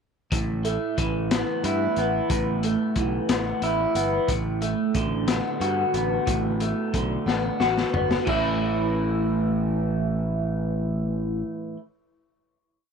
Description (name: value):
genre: psychedelic rock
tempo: 60 BPM (dotted quarters)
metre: 6/8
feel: straight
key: A mixolydian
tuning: A4 = 441 Hz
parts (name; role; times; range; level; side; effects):
- electric guitar through a small old amp; riff; 0.3-11.8 s; A2 to F#4; -24 LUFS; right 1 dB; phaser
- growling fingered electric bass; bass; 0.3-11.4 s; G1 to G2; -28 LUFS; equal; overdrive
- crunchy breakbeat drum kit; drums; 0.3-8.4 s; crash cymbal, hi-hat, kick drum, snare drum, toms; -28 LUFS; left 4 dB; none
room: small room ambience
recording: 1960s-style stereo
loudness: -22 LUFS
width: side -6 dB against mid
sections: 0.3-8.3 groove; 8.3-12.2 final chord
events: drum fill 7.3-8.3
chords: 0.3 Asus2; 4.3 Bm/A; 8.3 A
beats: | 0.31 1.30 | 2.30 3.29 | 4.29 5.28 | 6.28 7.27 | 8.27 9.27 | 10.26 11.26